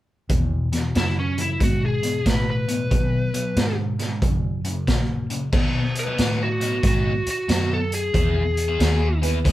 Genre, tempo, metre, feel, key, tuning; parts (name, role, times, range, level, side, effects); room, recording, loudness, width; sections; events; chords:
electric blues shuffle; 92 BPM; 4/4; swing 65% on 8ths; B mixolydian; A4 = 440 Hz
biting overdriven guitar; riff; 0.3-9.5 s; E2 to G#4; -27 LUFS; left 2 dB; phaser
vintage muted fingered electric bass; bass; 0.3-9.5 s; C#2 to B2; -24 LUFS; equal
raw garage drum kit; drums; 0.3-9.5 s; crash cymbal, hi-hat, kick drum, snare drum; -24 LUFS; equal
biting lead guitar; melody; 1.0-9.2 s; C#4 to B4; -26 LUFS; left 1 dB; overdrive
warm upright piano; accompaniment; 9.2-9.4 s; B3 to B4; -28 LUFS; right 8 dB
light reverb; band playing live in one room; -20 LUFS; side -15 dB against mid
0.3-5.5 A section; 5.5-9.5 B section
0.3 E; 2.9 B5; 4.2 F#; 5.5 B; 8.1 E